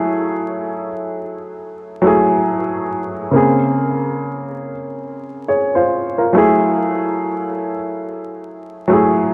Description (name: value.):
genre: hip hop.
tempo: 70 BPM.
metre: 4/4.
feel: swing 63% on 16ths.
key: unclear.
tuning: A4 = 440 Hz.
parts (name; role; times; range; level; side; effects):
warm upright piano; solo; 0.0-9.3 s; Db3 to Db5; -18 LUFS; equal; cassette tape, low-pass filter, tape echo.
room: moderate plate reverb, RT60 3.2 s.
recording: worn, warbling old tape, cassette tape, vinyl crackle, warbly pitch drift.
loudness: -18 LUFS.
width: mono.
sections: 0.0-9.3 A section.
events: none.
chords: 0.0 Gbm9; 3.3 Bbm9; 6.3 Gbm9.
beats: 0.76 1.62 2.48 | 3.33 4.19 5.05 5.91 | 6.76 7.62 8.48 9.34.